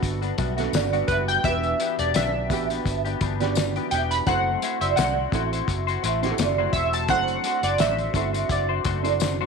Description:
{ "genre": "indie pop, bedroom pop", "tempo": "85 BPM", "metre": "4/4", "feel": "swing 55% on 16ths", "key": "E minor", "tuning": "A4 = 440 Hz", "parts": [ { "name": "dark upright piano", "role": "accompaniment", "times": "0.0-9.5 s", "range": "B3 to F#5", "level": "-32 LUFS", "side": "right 15 dB", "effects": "cassette tape" }, { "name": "semi-hollow electric guitar", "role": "accompaniment", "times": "0.0-9.5 s", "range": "E3 to C5", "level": "-29 LUFS", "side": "left 14 dB", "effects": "analog chorus, vibrato effect" }, { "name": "vintage muted fingered electric bass", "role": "bass", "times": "0.0-9.4 s", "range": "E1 to C2", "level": "-28 LUFS", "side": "equal", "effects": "none" }, { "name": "cloth-damped thuddy drum kit", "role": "drums", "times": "0.0-9.4 s", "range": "hi-hat, kick drum, snare drum", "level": "-28 LUFS", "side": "left 4 dB", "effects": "none" }, { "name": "tambourine", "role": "percussion", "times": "0.0-9.4 s", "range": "none", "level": "-39 LUFS", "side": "left 16 dB", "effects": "none" }, { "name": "vibraphone with soft mallets", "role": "second line", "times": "0.4-9.2 s", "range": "B4 to E5", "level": "-29 LUFS", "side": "right 11 dB", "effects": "ensemble chorus, slapback echo" }, { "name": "chorused retro synth keys", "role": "melody", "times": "1.1-9.2 s", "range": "B4 to B5", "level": "-25 LUFS", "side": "equal", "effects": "analog chorus, slapback echo" } ], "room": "light reverb, studio ambience", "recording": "1960s-style stereo with parts hard left and right", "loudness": "-21 LUFS", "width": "side -5 dB against mid", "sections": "0.0-9.5 A section", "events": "none", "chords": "0.0 Gmaj7; 1.4 Em7; 4.3 F#m7b5; 7.1 D7/F#", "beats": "0.03 0.73 | 1.44 2.15 2.85 3.56 | 4.26 4.97 5.67 6.38 | 7.08 7.79 8.50 9.20" }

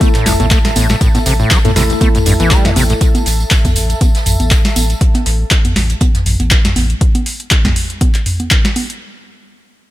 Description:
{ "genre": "acid house", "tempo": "120 BPM", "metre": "4/4", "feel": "swing 55% on 16ths", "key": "unclear", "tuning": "A4 = 443 Hz", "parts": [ { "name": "overdriven acid bass", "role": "riff", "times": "0.0-2.9 s", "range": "A1 to A3", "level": "-17 LUFS", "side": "equal", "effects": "tube saturation, analog chorus, sidechain pumping, digital delay" }, { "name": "tine electric piano", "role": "stabs", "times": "0.0-3.3 s", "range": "A3 to A4", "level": "-20 LUFS", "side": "left 3 dB", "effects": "medium stereo tremolo, digital delay" }, { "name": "booming analog drum machine", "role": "drums", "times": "0.0-9.0 s", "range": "congas, handclaps, hi-hat, snare drum, toms", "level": "-16 LUFS", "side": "equal", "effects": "overdrive" }, { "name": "electronic kick drum", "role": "drums", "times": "0.0-8.6 s", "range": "none", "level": "-13 LUFS", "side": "equal", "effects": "none" }, { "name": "jazz brush drum kit", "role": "drums", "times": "0.0-6.9 s", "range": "hi-hat, snare drum", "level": "-29 LUFS", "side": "right 2 dB", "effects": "none" }, { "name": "tambourine", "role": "percussion", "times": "0.0-5.0 s", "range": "none", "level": "-24 LUFS", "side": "right 2 dB", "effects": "none" }, { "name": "airy breathy pad", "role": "texture", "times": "0.0-5.0 s", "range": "A4 to A5", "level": "-24 LUFS", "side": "equal", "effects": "chorus, sidechain pumping" }, { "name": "saturated sub bass", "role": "bass", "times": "0.3-6.9 s", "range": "G1 to A1", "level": "-15 LUFS", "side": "equal", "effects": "sidechain pumping" } ], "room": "little or no reverb", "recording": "none", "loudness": "-10 LUFS", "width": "side -15 dB against mid", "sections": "0.0-9.0 A section", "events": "drop 0.0-9.0", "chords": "0.0 A5", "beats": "0.01 0.51 | 1.01 1.51 2.01 2.51 | 3.01 3.51 4.01 4.51 | 5.01 5.51 6.01 6.51 | 7.01 7.51 8.01 8.51" }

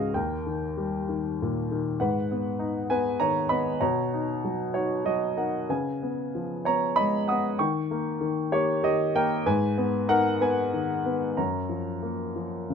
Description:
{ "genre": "classical, lyrical solo piano", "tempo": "60-68 BPM (dotted quarters)", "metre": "6/8", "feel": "rubato", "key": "G# dorian", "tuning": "A4 = 439 Hz", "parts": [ { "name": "warm baby grand piano", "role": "solo", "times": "0.0-12.7 s", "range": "C#2 to D#6", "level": "-24 LUFS", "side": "left 1 dB", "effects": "none" } ], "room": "light reverb", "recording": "minimal, uncompressed stereo recording", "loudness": "-24 LUFS", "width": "side -6 dB against mid", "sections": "0.0-12.7 A section", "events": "none", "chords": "0.1 D#; 2.0 G#m7; 3.8 Bmaj9; 5.7 C#7; 7.6 D#7; 9.5 G#m; 11.4 F#maj7", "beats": "| 0.14 1.09 | 2.00 2.89 | 3.80 4.74 | 5.70 6.66 | 7.59 8.52 | 9.46 10.41 | 11.37 12.36" }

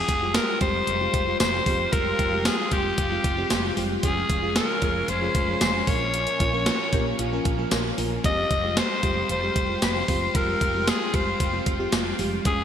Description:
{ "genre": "1980s-style pop", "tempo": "114 BPM", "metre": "4/4", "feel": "straight", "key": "F minor", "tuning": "A4 = 440 Hz", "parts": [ { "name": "raspy alto saxophone", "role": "melody", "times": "0.0-12.6 s", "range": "G4 to Eb5", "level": "-26 LUFS", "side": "left 2 dB", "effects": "ping-pong delay" }, { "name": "FM electric piano with soft pad layer", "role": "accompaniment", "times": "0.0-12.6 s", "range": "F3 to G5", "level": "-30 LUFS", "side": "right 1 dB", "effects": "chorus" }, { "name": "distorted electric guitar", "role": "accompaniment", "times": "0.0-12.6 s", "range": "Bb2 to F4", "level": "-36 LUFS", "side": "equal", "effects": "distortion, ensemble chorus" }, { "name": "phased analog pad", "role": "sustained chords", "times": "0.2-12.6 s", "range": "Db4 to C6", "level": "-34 LUFS", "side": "left 1 dB", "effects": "phaser, chorus" }, { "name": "woody fretless electric bass", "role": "bass", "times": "0.1-12.6 s", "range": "F1 to Bb1", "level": "-31 LUFS", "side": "right 1 dB", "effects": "none" }, { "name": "gated 80s digital drum machine", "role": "drums", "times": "0.1-12.6 s", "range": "hi-hat, kick drum, snare drum, tambourine", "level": "-26 LUFS", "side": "equal", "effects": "gated reverb, gated reverb snare" }, { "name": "buzzing marimba with medium hard mallets", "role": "second line", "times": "6.4-8.1 s", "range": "F4 to Bb4", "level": "-37 LUFS", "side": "right 1 dB", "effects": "ping-pong delay" } ], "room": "moderate lush hall reverb, RT60 2.4 s", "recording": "bright 1980s-style digital production", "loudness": "-21 LUFS", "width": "side -9 dB against mid", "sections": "0.0-12.6 A section", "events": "none", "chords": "0.0 Fmadd9; 4.0 Db/F; 5.9 Bbm; 8.2 Fmadd9", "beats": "0.35 0.88 1.40 | 1.93 2.45 2.98 3.51 | 4.03 4.56 5.08 5.61 | 6.14 6.66 7.19 7.72 | 8.24 8.77 9.30 9.82 | 10.35 10.88 11.40 11.93 | 12.45" }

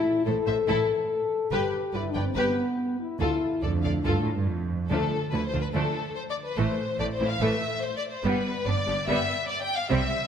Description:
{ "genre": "cinematic, heroic adventure film score", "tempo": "143 BPM", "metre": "4/4", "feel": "straight", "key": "D dorian", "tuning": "A4 = 440 Hz", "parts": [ { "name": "warm symphonic violin section", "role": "melody", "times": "0.0-10.3 s", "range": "A4 to G5", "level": "-31 LUFS", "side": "left 4 dB", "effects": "none" }, { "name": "rich symphonic violin section", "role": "second line", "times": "0.0-10.1 s", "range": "G3 to D5", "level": "-34 LUFS", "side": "left 3 dB", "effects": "none" }, { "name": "warm symphonic viola section", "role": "accompaniment", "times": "0.0-10.1 s", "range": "E3 to B4", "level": "-33 LUFS", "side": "right 2 dB", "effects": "none" }, { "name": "dark French horn section", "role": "sustained chords", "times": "0.0-4.5 s", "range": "B3 to A4", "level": "-27 LUFS", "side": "left 4 dB", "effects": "none" }, { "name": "dark symphonic double bass section", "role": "bass", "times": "0.3-10.0 s", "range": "G1 to D2", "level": "-33 LUFS", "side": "right 4 dB", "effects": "none" }, { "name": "rich symphonic cello section", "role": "bass", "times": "0.3-10.0 s", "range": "D2 to C3", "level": "-31 LUFS", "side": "right 3 dB", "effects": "none" }, { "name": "timpani", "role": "percussion", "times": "4.9-5.5 s", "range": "D3", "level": "-33 LUFS", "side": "right 1 dB", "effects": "none" } ], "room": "wet concert hall reverb, RT60 2.0 s", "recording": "none", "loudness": "-24 LUFS", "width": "side -8 dB against mid", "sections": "0.0-4.9 A section; 4.9-10.3 A section", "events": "none", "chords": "0.0 A5; 1.5 G; 3.2 Dm; 6.6 Am; 8.2 G", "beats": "0.26 0.68 1.10 | 1.52 1.94 2.36 2.78 | 3.20 3.62 4.05 4.47 | 4.90 5.32 5.74 6.15 | 6.57 6.99 7.41 7.83 | 8.24 8.66 9.07 9.49 | 9.90" }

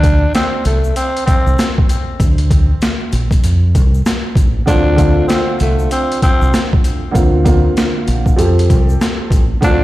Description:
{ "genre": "hip hop, boom-bap hip-hop", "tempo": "97 BPM", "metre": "4/4", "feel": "swing 62% on 16ths", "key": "unclear", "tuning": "A4 = 442 Hz", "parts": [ { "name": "growling tenor saxophone", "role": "melody", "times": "0.0-9.8 s", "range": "A3 to D4", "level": "-19 LUFS", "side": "equal", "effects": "high-pass filter, low-pass filter, ping-pong delay" }, { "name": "deep dub fingered electric bass", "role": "bass", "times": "0.0-9.8 s", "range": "A1 to F2", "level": "-14 LUFS", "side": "equal", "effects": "none" }, { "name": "boom bap sampler-style drum kit", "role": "drums", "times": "0.0-9.8 s", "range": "hi-hat, kick drum, snare drum", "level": "-14 LUFS", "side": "equal", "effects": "overdrive" }, { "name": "egg shaker", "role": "percussion", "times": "0.0-9.8 s", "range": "none", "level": "-39 LUFS", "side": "left 4 dB", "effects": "none" }, { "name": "dark upright piano", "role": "accompaniment", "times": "4.7-9.8 s", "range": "D3 to A4", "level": "-17 LUFS", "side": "right 1 dB", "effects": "cassette tape, high-pass filter, low-pass filter" } ], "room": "small room ambience", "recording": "played on a big sound system in a bare room, large studio reverb, vinyl crackle", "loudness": "-11 LUFS", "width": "side -16 dB against mid", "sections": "0.0-9.8 A section", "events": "break 0.0-4.7", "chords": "0.0 Csus2; 2.2 Bb/D; 3.4 F; 4.7 Dm7; 7.2 Bbadd9/D; 8.4 Fadd9", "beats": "0.35 0.96 1.58 | 2.20 2.82 3.44 4.06 | 4.68 5.29 5.91 6.53 | 7.15 7.77 8.39 9.01 | 9.62" }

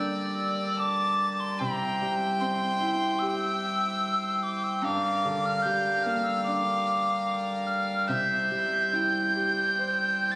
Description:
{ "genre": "celtic folk, Celtic slow air", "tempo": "66-75 BPM", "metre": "4/4", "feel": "rubato", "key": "G dorian", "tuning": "A4 = 439 Hz", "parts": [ { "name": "mellow hollow tin whistle", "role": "melody", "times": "0.0-10.4 s", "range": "Bb5 to A6", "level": "-27 LUFS", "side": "equal", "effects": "none" }, { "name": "clear fiddle", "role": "second line", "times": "0.0-10.4 s", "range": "D5 to A5", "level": "-31 LUFS", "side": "equal", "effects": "none" }, { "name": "clear upright piano", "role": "accompaniment", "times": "0.0-10.4 s", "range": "G2 to C5", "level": "-34 LUFS", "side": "equal", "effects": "none" }, { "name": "pipe organ, plenum", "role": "sustained chords", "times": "0.0-10.4 s", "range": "G3 to C5", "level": "-34 LUFS", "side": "equal", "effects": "none" } ], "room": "moderate recital hall reverb, RT60 1.7 s", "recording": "recorded on a phone in the room, club reverb", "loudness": "-24 LUFS", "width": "side -22 dB against mid", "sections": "0.0-10.4 A section", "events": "none", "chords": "0.0 Gm; 1.6 C; 4.8 Gm; 8.1 C", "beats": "0.79 | 1.61 2.41 3.22 4.03 | 4.84 5.66 6.46 7.27 | 8.09 8.95 9.82" }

